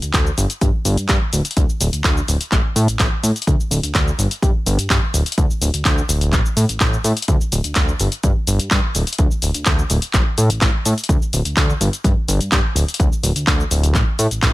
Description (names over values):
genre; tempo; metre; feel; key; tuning
filtered disco house; 126 BPM; 4/4; straight; unclear; A4 = 440 Hz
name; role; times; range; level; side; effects
fat analog bass; bass; 0.0-14.5 s; D1 to A2; -18 LUFS; equal; sidechain pumping, low-pass filter
punchy analog drum machine; drums; 0.0-14.5 s; handclaps, hi-hat, shaker; -21 LUFS; left 1 dB; sidechain pumping on hats, sidechain pumping on perc
electronic kick drum; drums; 0.1-14.5 s; none; -18 LUFS; equal; none
room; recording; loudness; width
little or no reverb; none; -15 LUFS; side -18 dB against mid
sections
0.0-14.5 A section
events
filter sweep on analog synth bass 0.0-14.5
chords
none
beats
0.14 0.61 1.09 | 1.57 2.04 2.52 3.00 | 3.47 3.95 4.42 4.90 | 5.38 5.85 6.33 6.81 | 7.28 7.76 8.23 8.71 | 9.19 9.66 10.14 10.62 | 11.09 11.57 12.04 12.52 | 13.00 13.47 13.95 14.43